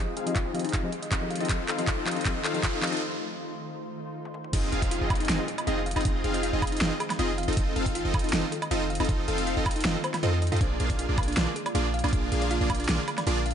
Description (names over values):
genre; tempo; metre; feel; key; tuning
future bass; 158 BPM; 4/4; half-time; F minor; A4 = 439 Hz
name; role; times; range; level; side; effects
mellow tine electric piano; accompaniment; 0.0-2.9 s; F3 to Eb5; -35 LUFS; left 3 dB; lush chorus, sidechain pumping, dub echo
shimmering ambient pad; sustained chords; 0.1-13.5 s; D3 to C5; -39 LUFS; equal; chorus, built-in reverb, sidechain pumping
thumb-piano-like synth pluck; arpeggios; 0.0-13.5 s; D4 to F5; -36 LUFS; left 4 dB; chorus, sidechain pumping, dub echo
big bright polysynth; riff; 0.0-13.4 s; Bb3 to F5; -30 LUFS; equal; sidechain pumping, dub echo
riser and downlifter; sound effects; 0.3-7.6 s; none; -40 LUFS; right 1 dB; none
big-room dance drum kit; drums; 0.2-13.5 s; crash cymbal, handclaps, hi-hat, snare drum, toms, woodblock; -31 LUFS; right 1 dB; overdrive, high-pass filter on hats, high-pass filter on toms, high-pass filter on snare, high-pass filter on cymbals, high-pass filter on perc
electronic kick drum; drums; 0.4-12.8 s; none; -28 LUFS; equal; overdrive
warm 808-style bass; bass; 4.5-13.5 s; F1 to F2; -30 LUFS; equal; sidechain pumping
room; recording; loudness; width
light reverb; nothing above 10.6 kHz; -25 LUFS; side -8 dB against mid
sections
0.0-4.5 A section; 4.5-13.5 B section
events
build-up 0.0-4.5; drum fill 0.0-3.0, 4.2; filter sweep on analog polysynth 0.0-4.5; break 3.0-4.5; drop 4.5-13.5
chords
0.0 Fm7; 1.3 F7; 4.5 Fm7; 7.4 F7; 10.6 Bb7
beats
0.36 0.74 1.11 | 1.50 1.88 2.25 2.63 | 3.01 3.39 3.77 4.15 | 4.53 4.91 5.29 5.67 | 6.05 6.43 6.81 7.19 | 7.57 7.95 8.33 8.71 | 9.09 9.47 9.85 10.23 | 10.61 10.99 11.37 11.75 | 12.13 12.51 12.89 13.27